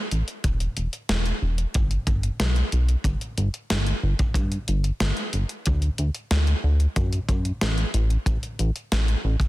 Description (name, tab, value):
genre	synthwave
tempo	92 BPM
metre	4/4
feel	straight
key	unclear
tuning	A4 = 440 Hz
part	chorused synth bass	bass	0.1-9.4 s	E1 to G2	-22 LUFS	equal	none
part	gated 80s digital drum machine	drums	0.1-9.5 s	hi-hat, snare drum	-28 LUFS	equal	gated reverb, gated reverb snare
part	kick drum	drums	0.4-9.5 s	none	-25 LUFS	equal	none
room	little or no reverb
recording	dense, heavily limited modern master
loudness	-22 LUFS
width	side -18 dB against mid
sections	0.0-9.5 A section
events	none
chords	none